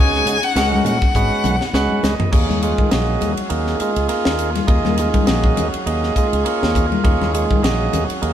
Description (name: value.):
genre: electric jazz fusion.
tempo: 102 BPM.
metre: 4/4.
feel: swing 56% on 16ths.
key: Eb minor.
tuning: A4 = 442 Hz.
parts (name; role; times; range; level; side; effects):
clear violin; melody; 0.0-2.0 s; F#5 to G#5; -20 LUFS; left 5 dB; none.
percussive tonewheel organ; accompaniment; 0.0-8.3 s; Gb3 to F#5; -20 LUFS; right 3 dB; overdrive.
clear chamber string section; sustained chords; 0.0-8.3 s; C#3 to F5; -29 LUFS; left 2 dB; none.
fingered electric bass; bass; 0.0-8.3 s; G#1 to Eb3; -22 LUFS; equal; none.
tight funk drum kit; drums; 0.1-8.3 s; crash cymbal, hi-hat, kick drum, ride cymbal, snare drum, toms; -20 LUFS; equal; none.
congas; percussion; 0.7-8.1 s; none; -24 LUFS; left 6 dB; none.
room: moderate stone room reverb, RT60 1.0 s.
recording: band playing live in one room.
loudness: -15 LUFS.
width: side -10 dB against mid.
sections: 0.0-2.3 A section; 2.3-8.3 B section.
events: drum fill 1.2-2.3; tonewheel organ fill 1.4-2.3.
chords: 0.0 C#9sus4; 2.3 Eb9sus4.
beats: 0.56 1.15 1.74 | 2.33 2.92 3.51 4.10 | 4.69 5.28 5.87 6.46 | 7.05 7.64 8.23.